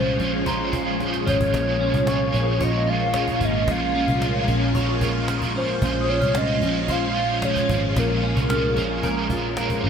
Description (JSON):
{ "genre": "dream pop", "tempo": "112 BPM", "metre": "4/4", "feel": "straight", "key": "unclear", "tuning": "A4 = 440 Hz", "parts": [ { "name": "warbly nostalgic lead", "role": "melody", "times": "0.0-9.5 s", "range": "Bb4 to F5", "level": "-26 LUFS", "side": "equal", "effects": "chorus, ping-pong delay" }, { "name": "crunchy overdriven guitar", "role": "accompaniment", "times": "0.0-9.9 s", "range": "Bb2 to C5", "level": "-28 LUFS", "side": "right 4 dB", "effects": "harmonic tremolo, analog chorus" }, { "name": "phased string machine", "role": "sustained chords", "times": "0.0-9.9 s", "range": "F3 to F4", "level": "-26 LUFS", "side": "equal", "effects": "ensemble chorus, phaser" }, { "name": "clean electric guitar", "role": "arpeggios", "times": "0.0-9.9 s", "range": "Bb2 to Db5", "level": "-26 LUFS", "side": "left 1 dB", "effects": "analog chorus, ping-pong delay" }, { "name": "vintage muted picked electric bass", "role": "bass", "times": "0.0-9.9 s", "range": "Ab1 to C2", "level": "-27 LUFS", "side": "equal", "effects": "none" }, { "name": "cajon", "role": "drums", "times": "0.2-9.8 s", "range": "none", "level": "-30 LUFS", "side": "equal", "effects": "none" }, { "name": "worn celesta", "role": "texture", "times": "0.5-9.9 s", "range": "Bb5 to F6", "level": "-36 LUFS", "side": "equal", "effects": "ping-pong delay" } ], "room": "moderate recital hall reverb, RT60 1.4 s", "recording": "none", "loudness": "-19 LUFS", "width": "side -7 dB against mid", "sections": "0.0-9.9 A section", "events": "drum fill 1.0-1.5", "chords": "0.0 Dbmaj7", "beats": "0.46 1.00 | 1.53 2.07 2.61 3.14 | 3.68 4.21 4.75 5.29 | 5.82 6.36 6.89 7.43 | 7.96 8.50 9.04 9.57" }